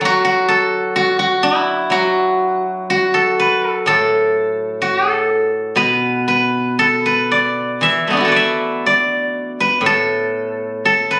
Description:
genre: chinese traditional.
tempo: 57-67 BPM.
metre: 4/4.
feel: rubato.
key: unclear.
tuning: A4 = 440 Hz.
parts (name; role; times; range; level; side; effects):
steel-string zither; solo; 0.0-11.2 s; A2 to E5; -16 LUFS; equal; none.
room: light reverb.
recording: recorded on a phone in the room, studio reverb, compression.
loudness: -16 LUFS.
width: mono.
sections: 0.0-11.2 A section.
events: none.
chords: none.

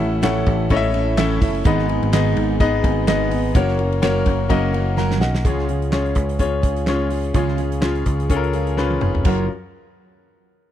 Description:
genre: piano-driven pop.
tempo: 126 BPM.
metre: 4/4.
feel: swing 56% on 16ths.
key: unclear.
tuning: A4 = 441 Hz.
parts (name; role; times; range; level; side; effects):
clear baby grand piano; accompaniment; 0.0-9.5 s; F#2 to A#5; -21 LUFS; left 6 dB; none.
fingerpicked steel-string acoustic guitar; riff; 0.0-9.5 s; G#2 to A#4; -25 LUFS; right 9 dB; none.
picked electric bass; bass; 0.0-9.5 s; E#1 to C#2; -22 LUFS; equal; none.
loose indie drum kit; drums; 0.2-9.4 s; crash cymbal, handclaps, hi-hat, kick drum, ride cymbal, snare drum, toms; -20 LUFS; equal; none.
room: studio reverb.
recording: dry, close 1970s-style studio recording.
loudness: -17 LUFS.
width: side -11 dB against mid.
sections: 0.0-5.4 A section; 5.4-9.3 B section; 9.3-10.7 C section.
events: drum fill 5.0-5.4, 8.8-9.3.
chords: 0.0 A; 1.6 G#m; 3.5 F#; 5.4 C#; 9.3 F#maj7.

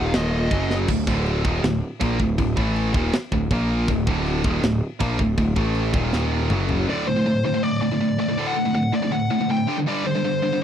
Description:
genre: heavy metal.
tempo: 160 BPM.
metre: 4/4.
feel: straight.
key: D phrygian dominant.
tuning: A4 = 440 Hz.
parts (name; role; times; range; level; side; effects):
high-gain lead guitar; melody; 0.0-0.8, 6.9-10.6 s; C5 to G5; -26 LUFS; left 3 dB; distortion, slapback echo.
tight distorted guitar; riff; 0.0-10.6 s; D2 to Bb3; -22 LUFS; equal; distortion.
fuzz picked electric bass; bass; 0.0-6.8 s; D1 to Bb1; -24 LUFS; equal; overdrive.
tight metal drum kit; drums; 0.1-6.8 s; crash cymbal, kick drum, snare drum, toms; -26 LUFS; equal; none.
room: small room ambience.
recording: dry, close 1970s-style studio recording.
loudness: -19 LUFS.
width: side -9 dB against mid.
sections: 0.9-6.9 A section; 6.9-10.6 B section.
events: drum fill 0.7, 6.1-6.9; half time 6.9-10.6.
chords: 0.0 Eb5; 0.5 F#5; 0.9 D5; 2.6 A5; 2.9 D5; 3.5 Bb5; 3.9 D5; 5.6 A5; 5.9 Eb5; 6.5 F#5; 6.9 D5; 9.7 G5.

